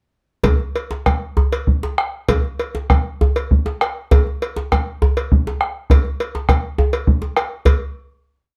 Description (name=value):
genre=west african traditional, West African drum ensemble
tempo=129-142 BPM (dotted quarters)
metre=12/8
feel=straight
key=none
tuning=none
part: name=bombo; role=percussion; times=0.4-7.8 s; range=none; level=-19 LUFS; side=equal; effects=none
part: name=cowbell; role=percussion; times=0.4-7.8 s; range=none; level=-25 LUFS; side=equal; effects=none
part: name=djembe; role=percussion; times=0.4-7.8 s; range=none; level=-21 LUFS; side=equal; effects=none
room=light reverb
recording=dark, warm production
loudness=-19 LUFS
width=mono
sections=0.4-7.7 A section; 7.7-8.6 final hit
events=speeding up 0.4-8.6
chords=none